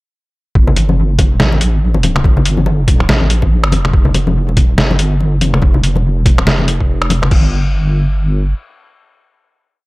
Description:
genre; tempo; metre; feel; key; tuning
deep dubstep; 142 BPM; 4/4; swing 59% on 16ths, half-time; unclear; A4 = 440 Hz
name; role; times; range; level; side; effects
deep soft wobble bass; bass; 0.6-8.5 s; F1 to A1; -14 LUFS; equal; chorus, tube saturation
electronic kick drum; drums; 0.6-7.4 s; none; -11 LUFS; equal; none
congas; percussion; 0.7-7.3 s; none; -18 LUFS; left 2 dB; dub echo
trip hop sampler-style drum kit; drums; 0.8-7.4 s; crash cymbal, finger snaps, hi-hat, snare drum; -17 LUFS; equal; none
room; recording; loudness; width
digital ambience; echo-heavy mix; -10 LUFS; side -21 dB against mid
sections
0.6-7.3 drop; 7.3-9.9 final note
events
drop 0.6-7.3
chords
none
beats
| 0.55 0.97 1.40 1.82 | 2.24 2.67 3.09 3.51 | 3.93 4.36 4.78 5.20 | 5.62 6.05 6.47 6.89 | 7.31 7.74 8.16

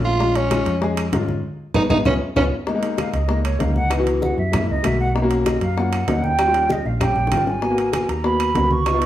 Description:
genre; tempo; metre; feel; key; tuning
Afro-Cuban jazz; 194 BPM; 4/4; straight; unclear; A4 = 440 Hz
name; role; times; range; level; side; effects
growling tenor saxophone; melody; 0.0-2.4 s; C#4 to F4; -21 LUFS; right 2 dB; none
warm concert grand piano; accompaniment; 0.0-9.1 s; E3 to G#4; -22 LUFS; left 3 dB; none
hollow-body short-scale fingered electric bass; bass; 0.0-9.1 s; G#1 to G#2; -23 LUFS; right 1 dB; none
bongos; percussion; 0.0-9.1 s; none; -29 LUFS; left 3 dB; none
congas; percussion; 0.0-9.1 s; none; -27 LUFS; equal; none
timbales; percussion; 0.4-9.1 s; none; -31 LUFS; right 5 dB; none
claves; percussion; 0.5-9.0 s; none; -38 LUFS; right 1 dB; none
mellow concert flute; second line; 3.0-9.1 s; C#5 to C#6; -23 LUFS; right 3 dB; none
room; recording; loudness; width
wet large studio reverb, RT60 0.9 s; heard from further back in the room; -17 LUFS; side -12 dB against mid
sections
0.0-2.7 A section; 2.7-9.1 A section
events
tenor saxophone solo 0.0-2.7; band accent 1.4-2.7; drum fill 1.9-2.7, 7.2-7.6; flute solo 2.7-9.1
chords
0.2 A#m7; 1.4 G#m; 2.1 C#7; 2.7 C#69; 3.9 C#m7; 4.5 F#7; 5.2 Bmaj9; 6.4 D#7; 7.6 G#m7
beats
| 0.20 0.51 0.82 1.13 | 1.44 1.75 2.06 2.37 | 2.68 2.99 3.30 3.61 | 3.92 4.22 4.54 4.84 | 5.15 5.46 5.77 6.08 | 6.39 6.70 7.01 7.32 | 7.63 7.94 8.25 8.56 | 8.87

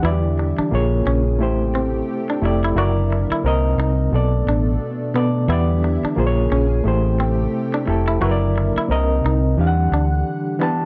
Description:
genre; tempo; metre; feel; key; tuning
R&B, neo-soul; 88 BPM; 4/4; swing 60% on 16ths; E minor; A4 = 440 Hz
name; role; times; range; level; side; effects
electric guitar through a small old amp; second line; 0.0-10.8 s; B3 to F#4; -28 LUFS; equal; none
overdriven reed electric piano; accompaniment; 0.0-10.9 s; B2 to A5; -23 LUFS; equal; fast tremolo
lush unison pad; sustained chords; 0.0-10.9 s; B2 to F#5; -30 LUFS; equal; chorus
vintage muted fingered electric bass; bass; 0.0-10.2 s; F1 to E2; -22 LUFS; equal; none
room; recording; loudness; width
light reverb; dark, warm production; -19 LUFS; mono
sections
0.0-10.9 A section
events
none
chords
0.0 Em7; 0.7 A#m7; 1.4 Am7; 2.8 F#7b13; 3.4 Cm7; 4.1 Bm7; 5.5 Em7; 6.2 A#m7; 6.8 Am7; 8.2 F#7b13; 8.9 Cm7; 9.6 Em9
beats
| 0.03 0.71 1.39 2.07 | 2.75 3.43 4.12 4.80 | 5.48 6.16 6.84 7.53 | 8.21 8.89 9.57 10.25

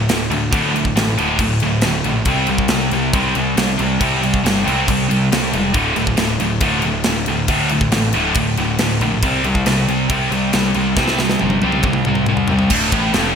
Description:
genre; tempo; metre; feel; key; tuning
heavy metal; 138 BPM; 4/4; straight; unclear; A4 = 440 Hz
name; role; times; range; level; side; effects
scooped high-gain guitar; riff; 0.0-13.3 s; D2 to C4; -17 LUFS; equal; distortion
fuzz picked electric bass; bass; 0.0-13.3 s; D1 to D2; -22 LUFS; equal; overdrive
tight metal drum kit; drums; 0.1-13.2 s; crash cymbal, kick drum, snare drum, toms; -20 LUFS; equal; gated reverb
room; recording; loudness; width
moderate lush hall reverb, RT60 1.7 s, small room ambience; bright 1980s-style digital production; -14 LUFS; side -7 dB against mid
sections
0.0-12.7 A section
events
drum fill 11.0-12.7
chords
0.0 D5; 2.3 C5; 5.7 D5; 9.2 C5; 12.7 Dm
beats
0.08 | 0.52 0.95 1.39 1.82 | 2.26 2.70 3.13 3.57 | 4.00 4.44 4.88 5.31 | 5.75 6.18 6.62 7.05 | 7.49 7.92 8.36 8.79 | 9.23 9.66 10.10 10.53 | 10.97 11.40 11.84 12.27 | 12.70 13.14

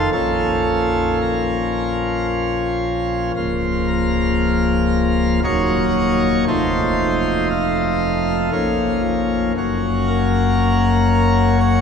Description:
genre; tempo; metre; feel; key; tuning
classical, chorale-style piece for pipe organ; 58 BPM; 3/4; straight; Bb minor; A4 = 440 Hz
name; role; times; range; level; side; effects
pipe organ, plenum; solo; 0.0-11.8 s; Db1 to Db5; -16 LUFS; left 1 dB; none
room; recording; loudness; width
wet cathedral reverb, RT60 5.0 s; dark, warm production; -16 LUFS; side -6 dB against mid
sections
0.0-3.3 A section; 3.3-11.8 B section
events
none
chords
0.1 Bbm; 3.3 Bbm/Db; 5.4 Ebm; 6.5 F7; 8.5 Bbm; 9.6 Gb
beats
| 0.12 1.20 2.28 | 3.35 4.39 5.43 | 6.47 7.50 8.53 | 9.55 10.57 11.60

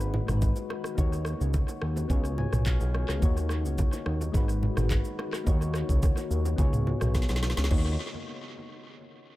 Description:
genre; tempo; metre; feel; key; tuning
afrobeats; 107 BPM; 4/4; straight; Eb minor; A4 = 440 Hz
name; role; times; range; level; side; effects
soft electric-piano-like synth keys; accompaniment; 0.0-8.0 s; Ab3 to Ab5; -36 LUFS; left 3 dB; chorus, tape echo
deep dark ambient pad; sustained chords; 0.2-8.0 s; Eb3 to Gb4; -41 LUFS; left 4 dB; chorus, built-in reverb, sidechain pumping
fat analog bass; bass; 0.0-8.0 s; Ab1 to Eb2; -28 LUFS; equal; none
afro-pop drum kit; drums; 0.0-7.8 s; crash cymbal, handclaps, kick drum, rim click, shaker, snare drum, toms; -28 LUFS; equal; tape echo
bongos and congas; percussion; 0.1-8.0 s; none; -40 LUFS; right 3 dB; none
room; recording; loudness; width
digital ambience; echo-heavy mix; -25 LUFS; side -17 dB against mid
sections
0.0-7.7 A section; 7.7-9.4 B section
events
synth keys fill 2.1-3.2; drum fill 7.1-7.7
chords
0.0 Abm7; 1.0 Ebm7; 2.1 Db7; 3.2 Ebm7; 4.3 Abm7; 5.5 Ebm7; 6.6 Db7; 7.7 Ebm7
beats
0.42 | 0.98 1.54 2.10 2.66 | 3.22 3.78 4.34 4.91 | 5.47 6.03 6.59 7.15 | 7.71

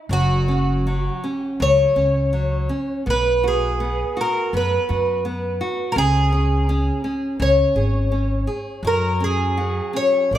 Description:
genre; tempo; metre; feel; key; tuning
fado-style ballad; 83 BPM; 4/4; rubato; F# major; A4 = 436 Hz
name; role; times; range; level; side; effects
fingerpicked twelve-string acoustic guitar; melody; 0.1-10.4 s; F#4 to D5; -21 LUFS; equal; tape echo
nylon-string guitar; accompaniment; 0.1-10.4 s; F#3 to G#4; -26 LUFS; equal; none
upright bass; bass; 0.1-10.4 s; F#1 to F#2; -21 LUFS; equal; none
room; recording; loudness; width
moderate recital hall reverb, RT60 1.6 s; none; -18 LUFS; side -12 dB against mid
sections
0.1-10.4 A section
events
none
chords
0.1 F#5; 3.1 B5; 6.0 C#5; 8.8 F#sus2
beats
| 0.10 0.86 1.60 2.33 | 3.06 3.80 4.53 5.25 | 5.96 6.68 7.39 8.11 | 8.83 9.56 10.31

